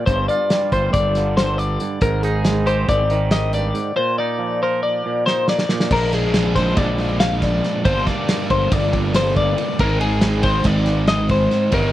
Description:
math rock and midwest emo; 278 BPM (eighths); 9/8; straight; A4 = 442 Hz
twangy electric guitar; accompaniment; 0.0-7.8 s; G2 to C5; -25 LUFS; right 7 dB
twelve-string electric guitar; arpeggios; 0.0-11.9 s; Ab4 to F5; -21 LUFS; left 3 dB; wide subtle chorus
fuzz fingered electric bass; bass; 0.1-11.9 s; G1 to Bb1; -21 LUFS; equal; overdrive
loose indie drum kit; drums; 0.1-11.8 s; crash cymbal, hi-hat, kick drum, ride cymbal, snare drum; -22 LUFS; equal
overdriven electric guitar; riff; 5.9-11.9 s; G2 to Eb4; -22 LUFS; right 2 dB
light reverb; worn, warbling old tape, cassette tape, warbly pitch drift; -16 LUFS; side -14 dB against mid
0.0-5.9 A section; 5.9-11.9 B section
drum fill 5.3-5.9
0.1 G5; 2.0 Abmaj7(no3); 4.0 Bbsus24; 5.9 Bb7; 7.9 Gm; 9.8 Ab
| 0.07 0.29 0.51 0.72 0.94 1.16 1.37 1.59 1.81 | 2.02 2.24 2.46 2.67 2.89 3.10 3.32 3.54 3.75 | 3.97 4.19 4.40 4.62 4.83 5.05 5.27 5.48 5.70 | 5.92 6.13 6.35 6.56 6.78 6.99 7.21 7.42 7.64 | 7.86 8.07 8.29 8.50 8.72 8.93 9.15 9.36 9.58 | 9.79 10.01 10.22 10.44 10.65 10.87 11.08 11.30 11.51 | 11.72

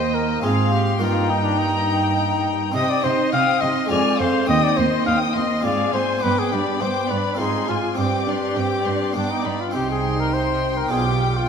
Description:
classical, baroque-style concerto movement with solo episodes; 103 BPM; 3/4; straight; C minor; A4 = 441 Hz
mellow trumpet; melody; 0.0-11.5 s; D4 to F5; -23 LUFS; left 3 dB
rich chamber violin section; melody; 0.0-11.5 s; G5 to F6; -28 LUFS; left 7 dB
rich chamber violin section; second line; 0.0-11.5 s; D5 to C6; -27 LUFS; left 2 dB
dark chamber viola section; accompaniment; 0.0-11.5 s; Ab3 to Ab4; -27 LUFS; right 2 dB
harpsichord; accompaniment; 0.0-11.5 s; Eb2 to G4; -26 LUFS; right 2 dB
dark chamber cello section; bass; 0.0-11.5 s; Eb2 to C3; -25 LUFS; right 3 dB
rich chamber double bass section; bass; 9.8-11.5 s; B1 to C2; -26 LUFS; right 3 dB
wet concert hall reverb, RT60 2.0 s; -18 LUFS; side -6 dB against mid
0.0-9.8 A section; 9.8-11.5 A section
0.4 Fm/Ab; 1.0 Eb/G; 2.8 Cm; 3.9 Fm; 4.5 Cm/Eb; 5.6 Fm/Ab; 6.2 G; 7.4 Fm/Ab; 8.0 Gsus4; 9.2 G; 9.8 Cm; 10.9 G7/B
0.44 | 1.02 1.60 2.18 | 2.75 3.33 3.91 | 4.49 5.07 5.65 | 6.23 6.81 7.39 | 7.98 8.57 9.16 | 9.75 10.33 10.91

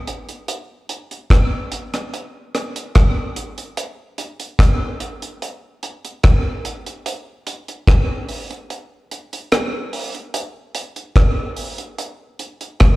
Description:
reggae; 73 BPM; 4/4; straight
deep reggae drum kit; drums; 0.1-13.0 s; hi-hat, kick drum, rim click; -17 LUFS; equal
light reverb; live gig heard through the venue's PA, club reverb; -18 LUFS; side -20 dB against mid
0.0-13.0 A section
break 8.7-10.3
| 0.48 1.30 2.13 2.95 | 3.77 4.59 5.41 6.24 | 7.06 7.88 8.70 9.52 | 10.34 11.16 11.98 12.80

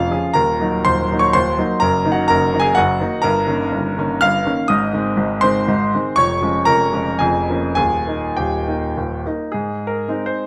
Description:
classical, romantic triple-time dance for piano with dotted rhythms; 93-132 BPM; 3/4; rubato; Ab major from 3.2 s; A4 = 438 Hz
clear grand piano; solo; 0.0-10.5 s; Eb1 to F6; -18 LUFS; equal
moderate large studio reverb, RT60 1.3 s; -18 LUFS; mono
0.0-9.5 A section
0.4 Ebm; 1.8 Ebm/Gb; 3.2 Eb7/G; 4.7 Ab; 6.2 Bbm7/F; 7.8 Eb; 9.5 Ab
| 0.36 0.85 1.35 | 1.81 2.29 2.77 | 3.23 3.73 4.23 | 4.70 5.18 5.68 | 6.16 6.66 7.20 | 7.76 8.36 8.97 | 9.53 10.08

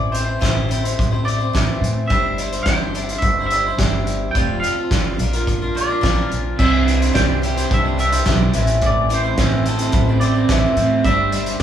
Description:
folk rock and heartland rock; 107 BPM; 4/4; straight; C major; A4 = 440 Hz
twangy electric guitar; melody; 0.0-11.6 s; C5 to G5; -23 LUFS; right 1 dB
picked swing-style acoustic guitar; accompaniment; 0.0-11.6 s; A2 to C5; -23 LUFS; left 1 dB
upright bass; bass; 0.0-11.6 s; F1 to A2; -21 LUFS; equal
loose indie drum kit; drums; 0.1-11.6 s; crash cymbal, hi-hat, kick drum, snare drum; -21 LUFS; equal
crunchy overdriven guitar; riff; 6.6-11.6 s; A2 to A4; -22 LUFS; right 5 dB
wet studio reverb, RT60 0.7 s; band playing live in one room, studio ambience; -16 LUFS; side -10 dB against mid
0.0-6.6 A section; 6.6-11.6 A section
0.0 Am; 2.1 Cadd9/G; 4.3 Fadd9; 5.2 Bb; 6.6 Cadd9; 8.5 Am; 11.1 Cadd9/G
0.42 0.98 1.54 | 2.10 2.67 3.23 3.79 | 4.35 4.91 5.47 6.03 | 6.59 7.14 7.70 8.26 | 8.82 9.38 9.94 10.49 | 11.05 11.61

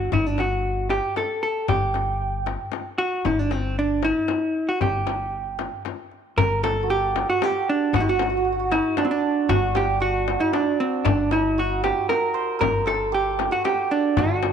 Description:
Persian modal ensemble; 115 BPM; 3/4; straight; G avaz esfahan; A4 = 440 Hz
vintage hollow-body jazz guitar; melody; 0.0-14.5 s; C4 to Bb4; -22 LUFS; right 2 dB
upright bass; bass; 0.0-14.5 s; G1; -28 LUFS; left 2 dB
frame drum; percussion; 0.1-14.5 s; -30 LUFS; left 12 dB
tombak; percussion; 0.1-14.5 s; -29 LUFS; left 8 dB
santur; second line; 6.4-14.5 s; D4 to C5; -26 LUFS; right 9 dB
moderate echo chamber reverb, RT60 2.1 s; 1960s-style stereo with parts hard left and right; -20 LUFS; side -7 dB against mid
0.0-6.4 A section; 6.4-14.5 B section
| 0.12 0.65 1.17 | 1.69 2.21 2.73 | 3.25 3.77 4.29 | 4.81 5.33 5.85 | 6.37 6.89 7.41 | 7.93 8.45 8.97 | 9.49 10.01 10.53 | 11.05 11.57 12.09 | 12.61 13.13 13.65 | 14.17

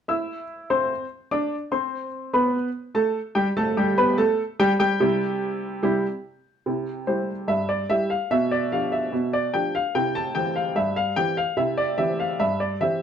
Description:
ragtime piano; 73 BPM; 2/4; straight; C major; A4 = 442 Hz
clear upright piano; solo; 0.1-13.0 s; G2 to E6; -21 LUFS; equal
wet studio reverb, RT60 0.7 s; band playing live in one room; -21 LUFS; side -8 dB against mid
0.1-6.7 A section; 6.7-13.0 B section
0.1 C; 8.3 G7/B; 9.9 C
| 0.08 0.91 | 1.73 2.54 | 3.36 4.18 | 5.00 5.83 | 6.66 7.48 | 8.30 9.12 | 9.94 10.76 | 11.58 12.40

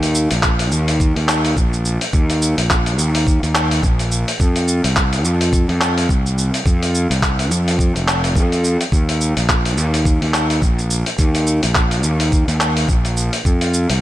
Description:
sunset chillout; 106 BPM; 4/4; swing 57% on 16ths; A4 = 440 Hz
fuzz fingered electric bass; bass; 0.0-14.0 s; F1 to F2; -17 LUFS; equal; overdrive
dusty soul sampler-style drum kit; drums; 0.0-14.0 s; handclaps, hi-hat, shaker; -20 LUFS; equal
electronic kick drum; drums; 0.4-13.6 s; -17 LUFS; equal
little or no reverb; -14 LUFS; side -14 dB against mid
0.0-14.0 A section
0.43 1.00 1.57 | 2.13 2.70 3.26 3.83 | 4.40 4.96 5.53 6.09 | 6.66 7.23 7.79 8.36 | 8.92 9.49 10.06 10.62 | 11.19 11.76 12.32 12.89 | 13.45

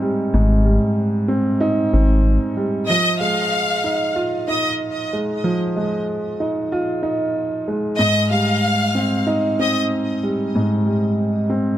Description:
hip hop, boom-bap hip-hop; 94 BPM; 4/4; swing 61% on 16ths; F minor; A4 = 445 Hz
dark grand piano; accompaniment; 0.0-11.8 s; Ab2 to F4; -19 LUFS; right 1 dB; cassette tape
soft dub sub bass; bass; 0.3-2.4 s; Ab1; -15 LUFS; equal
warm studio violin section; melody; 2.9-9.8 s; Eb5 to F6; -21 LUFS; left 1 dB; digital delay
moderate plate reverb, RT60 3.6 s; -17 LUFS; side -12 dB against mid
0.0-2.9 A section; 2.9-11.8 B section
break 0.0-2.9
0.0 Abmaj7; 2.9 Fm7; 8.0 Abmaj7
| 0.33 0.97 1.61 2.25 | 2.89 3.52 4.16 4.80 | 5.44 6.08 6.72 7.35 | 7.99 8.63 9.27 9.91 | 10.54 11.18

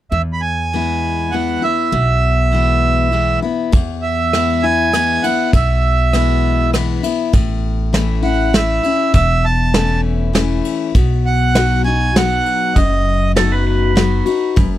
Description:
honky-tonk and classic country; 100 BPM; 3/4; straight; E major; A4 = 440 Hz
accordion; melody; 0.1-13.3 s; D#5 to B5; -17 LUFS; right 4 dB
picked steel-string acoustic guitar; accompaniment; 0.1-14.8 s; E2 to F#4; -19 LUFS; left 7 dB
upright bass; bass; 0.1-14.8 s; E1 to E2; -18 LUFS; equal
soft brush drum kit; drums; 3.7-14.7 s; kick drum, ride cymbal, rim click, snare drum; -16 LUFS; right 1 dB
pedal steel guitar; second line; 13.4-14.7 s; A4 to B4; -22 LUFS; right 6 dB
little or no reverb; dry, close 1970s-style studio recording; -13 LUFS; side -13 dB against mid
0.1-3.7 A section; 3.7-14.8 B section
0.1 E; 7.3 A; 11.0 B
| 0.12 0.72 1.33 | 1.93 2.53 3.13 | 3.73 4.33 4.94 | 5.54 6.14 6.74 | 7.34 7.94 8.54 | 9.15 9.75 10.35 | 10.95 11.55 12.16 | 12.76 13.36 13.97 | 14.57

